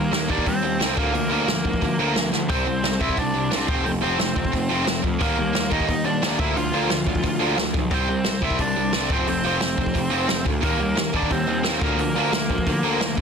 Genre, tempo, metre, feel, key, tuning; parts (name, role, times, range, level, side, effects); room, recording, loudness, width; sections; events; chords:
punk rock; 177 BPM; 4/4; straight; A4 = 440 Hz
biting lead guitar; melody; 0.0-13.1 s; Bb3 to F5; -26 LUFS; equal; overdrive
sludgy distorted guitar; riff; 0.0-13.2 s; C3 to C4; -24 LUFS; equal; overdrive
fuzz picked electric bass; bass; 0.0-13.2 s; F1 to D3; -27 LUFS; equal; overdrive
jazz brush drum kit; drums; 0.1-13.2 s; hi-hat, kick drum, snare drum; -26 LUFS; equal
little or no reverb; dense, heavily limited modern master; -20 LUFS; side -6 dB against mid
0.0-13.2 A section
drum fill 2.3
0.0 Eb; 1.0 Bb/D; 2.5 C; 3.7 F; 5.2 Eb; 6.4 Bb/D; 7.9 C; 9.1 F; 10.6 Eb; 11.8 Bb/D